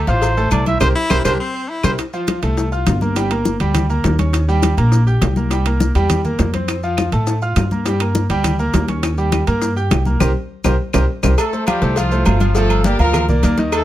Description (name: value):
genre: latin, salsa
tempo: 204 BPM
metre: 4/4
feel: straight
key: F major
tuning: A4 = 440 Hz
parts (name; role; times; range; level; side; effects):
- bright concert grand piano; accompaniment; 0.0-13.8 s; Eb3 to G6; -21 LUFS; right 1 dB; none
- clear trumpet; melody; 0.1-1.9 s; C5 to E5; -22 LUFS; right 1 dB; tape echo
- upright bass; bass; 0.1-13.8 s; G1 to A2; -17 LUFS; equal; none
- congas; percussion; 0.1-13.8 s; none; -23 LUFS; left 3 dB; none
- cowbell and bongos; percussion; 0.1-13.8 s; none; -25 LUFS; left 5 dB; none
- maracas; percussion; 0.1-13.8 s; none; -34 LUFS; left 3 dB; none
- agogo bells and timbales; percussion; 0.2-13.8 s; none; -25 LUFS; right 8 dB; none
- claves; percussion; 0.5-1.9, 6.7-13.8 s; none; -29 LUFS; left 5 dB; none
- bright baritone saxophone; second line; 1.0-2.0 s; C4 to E4; -22 LUFS; left 2 dB; none
- clear horn section; melody; 11.4-13.8 s; F3 to Bb4; -21 LUFS; right 1 dB; tape echo
room: little or no reverb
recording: close, detailed microphones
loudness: -14 LUFS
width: side -13 dB against mid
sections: 0.0-2.0 A section; 2.0-11.4 B section; 11.4-13.8 C section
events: band accent 0.8-2.0, 10.2-11.4; drum fill 1.3-2.0, 10.6-11.4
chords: 0.0 Dm7 (rootless); 0.8 C7; 2.0 F; 3.2 Gm; 4.3 Eb7; 5.5 C7; 6.7 F; 7.9 Gm; 9.0 Eb7; 10.2 C5; 11.4 F; 12.6 Gm7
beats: 0.22 0.52 | 0.81 1.10 1.40 1.69 | 1.99 2.28 2.57 2.87 | 3.16 3.45 3.75 4.04 | 4.33 4.63 4.92 5.21 | 5.51 5.80 6.09 6.39 | 6.68 6.97 7.27 7.56 | 7.86 8.15 8.44 8.74 | 9.03 9.32 9.62 9.91 | 10.20 10.50 10.79 11.08 | 11.38 11.67 11.96 12.26 | 12.55 12.84 13.14 13.43 | 13.72